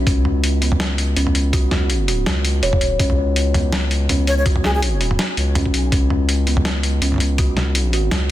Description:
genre	half-time drum and bass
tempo	164 BPM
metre	4/4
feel	swing 55% on 16ths, half-time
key	C# minor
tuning	A4 = 438 Hz
part	saturated sub bass	bass	0.0-8.3 s	E1 to C#2	-19 LUFS	equal	tube saturation
part	kalimba	arpeggios	0.1-8.3 s	B3 to C#5	-24 LUFS	right 1 dB	tape echo
part	boom bap sampler-style drum kit	drums	0.1-8.2 s	hi-hat, snare drum, toms	-22 LUFS	equal	small room reverb
part	electronic kick drum	drums	0.1-7.5 s	none	-19 LUFS	equal	small room reverb
part	breathy jazz flute	melody	4.3-4.8 s	G#4 to C#5	-26 LUFS	left 1 dB	tape echo
room	light reverb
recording	dense, heavily limited modern master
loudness	-16 LUFS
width	side -14 dB against mid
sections	0.0-8.3 A section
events	none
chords	none

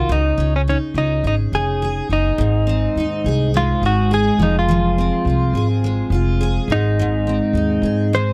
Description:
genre	acoustic pop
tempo	105 BPM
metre	4/4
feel	swing 55% on 16ths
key	Ab major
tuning	A4 = 439 Hz
part	direct-recorded clean electric guitar	melody	0.0-8.3 s	Db4 to C5	-23 LUFS	equal	none
part	picked steel-string acoustic guitar	accompaniment	0.0-8.3 s	Ab2 to Bb4	-24 LUFS	equal	double-tracked
part	upright bass	bass	0.0-8.3 s	F1 to Ab2	-22 LUFS	equal	none
room	light reverb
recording	dry, close 1970s-style studio recording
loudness	-18 LUFS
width	mono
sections	0.0-2.4 A section; 2.4-8.3 B section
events	none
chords	0.1 Dbadd9; 2.4 Ab; 4.4 Fm; 6.7 Ab

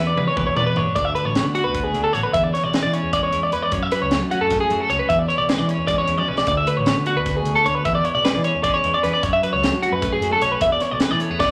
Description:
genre	math rock and midwest emo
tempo	304 BPM (eighths)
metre	7/8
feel	straight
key	unclear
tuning	A4 = 440 Hz
part	twelve-string electric guitar	accompaniment	0.0-11.5 s	D2 to F#4	-29 LUFS	equal	none
part	twelve-string electric guitar	arpeggios	0.0-11.5 s	F#4 to E5	-22 LUFS	equal	harmonic tremolo
part	growling fingered electric bass	bass	0.0-11.5 s	A1 to F#3	-30 LUFS	equal	overdrive
part	crisp fusion drum kit	drums	0.2-11.5 s	hi-hat, kick drum, snare drum, toms	-28 LUFS	equal	none
room	wet large studio reverb, RT60 0.8 s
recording	none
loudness	-20 LUFS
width	mono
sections	1.0-11.5 A section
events	drum fill 0.0-1.0, 6.2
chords	0.0 E7; 1.0 D6; 2.3 E6; 3.7 F#madd9; 5.1 E6; 6.5 D6; 7.9 E6; 9.2 F#madd9; 10.6 E7sus4

